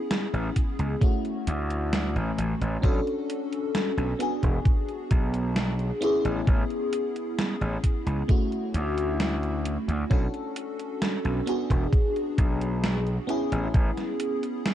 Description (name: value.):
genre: vaporwave.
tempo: 66 BPM.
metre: 4/4.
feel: straight.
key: A major.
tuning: A4 = 439 Hz.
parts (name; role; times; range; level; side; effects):
FM electric piano with soft pad layer; accompaniment; 0.0-14.7 s; A3 to A4; -29 LUFS; left 1 dB; phaser, wide subtle chorus, tape echo.
gated 80s digital drum machine; drums; 0.1-14.7 s; hi-hat, snare drum; -31 LUFS; right 1 dB; gated reverb, gated reverb snare.
gritty slap bass; bass; 0.3-13.9 s; E1 to D2; -27 LUFS; equal; overdrive.
electronic kick drum; drums; 0.6-13.9 s; none; -22 LUFS; equal; none.
room: light reverb, digital ambience.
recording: dark, warm production, cassette tape.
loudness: -24 LUFS.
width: side -11 dB against mid.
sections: 0.0-14.7 A section.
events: none.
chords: 0.0 Amaj7; 1.0 Dmaj7; 2.8 Bm7; 4.2 E9 (rootless); 6.0 Amaj7; 8.3 Dmaj7; 10.1 Bm7; 11.5 E9 (rootless); 13.3 Amaj7.